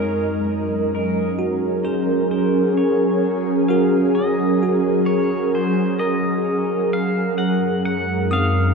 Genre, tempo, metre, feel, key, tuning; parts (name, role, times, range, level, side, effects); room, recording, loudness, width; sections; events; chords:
ambient; 65 BPM; 4/4; straight; Gb lydian; A4 = 439 Hz
pedal steel guitar; melody; 0.0-8.7 s; C5 to Gb5; -29 LUFS; equal; tape echo
ethereal airy pad; sustained chords; 0.0-8.7 s; Gb2 to Eb5; -18 LUFS; equal; ensemble chorus, built-in reverb
bell-like tine electric piano; arpeggios; 0.0-8.7 s; C4 to Eb6; -28 LUFS; right 2 dB; medium stereo tremolo, tape echo
wet plate reverb, RT60 3.4 s; dreamy mix soaked in reverb; -17 LUFS; side -4 dB against mid
0.0-8.7 A section
fade-in on pedal steel guitar 0.0-8.7; fade-out on tine electric piano 0.0-8.7
0.0 Gb69; 7.4 Ab9/Gb